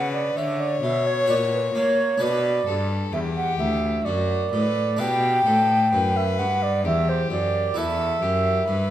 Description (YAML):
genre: classical, baroque-style sonata movement with continuo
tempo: 65 BPM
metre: 3/4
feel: straight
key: G major from 5.0 s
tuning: A4 = 441 Hz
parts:
  - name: rich violin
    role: melody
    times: 0.0-8.9 s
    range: F#4 to C#5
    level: -28 LUFS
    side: left 5 dB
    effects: none
  - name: baroque flute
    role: second line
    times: 0.0-8.9 s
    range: B4 to G5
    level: -23 LUFS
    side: right 2 dB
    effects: none
  - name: harpsichord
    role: accompaniment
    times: 0.0-8.9 s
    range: D2 to C#5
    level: -30 LUFS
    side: left 2 dB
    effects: none
  - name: rich cello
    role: bass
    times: 0.0-8.9 s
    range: D2 to A#3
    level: -26 LUFS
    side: equal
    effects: none
room: wet recital hall reverb, RT60 1.6 s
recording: none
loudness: -20 LUFS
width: side -12 dB against mid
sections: 0.0-8.9 A section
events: none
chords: 0.0 Bm; 1.3 F#/A#; 2.2 Bm; 5.0 G; 7.8 Em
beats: 0.36 1.28 | 2.21 3.13 4.05 | 4.99 5.92 6.84 | 7.76 8.68